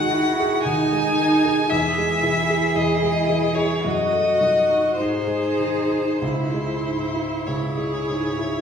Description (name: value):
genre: classical, slow romantic movement for piano quartet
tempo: 47-57 BPM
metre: 4/4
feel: rubato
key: C# minor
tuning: A4 = 440 Hz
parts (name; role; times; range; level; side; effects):
- rich violin; melody; 0.0-8.6 s; B#4 to G#5; -22 LUFS; left 2 dB; none
- rich cello; second line; 0.0-8.6 s; D#4 to G#4; -25 LUFS; right 3 dB; none
- rich viola; accompaniment; 0.0-8.6 s; D#4 to G#4; -29 LUFS; right 3 dB; none
- warm baby grand piano; accompaniment; 0.0-8.6 s; C#2 to G#4; -24 LUFS; equal; none
room: wet recital hall reverb, RT60 1.6 s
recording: recorded in a church or concert hall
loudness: -18 LUFS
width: side -7 dB against mid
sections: 0.0-8.6 A section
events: none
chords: 0.0 G#7(no3)/D#; 1.7 Emaj7; 3.8 D#dim/F#; 5.0 G#; 6.2 C#m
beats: 0.64 | 1.71 2.76 3.85 4.99 | 6.22 7.47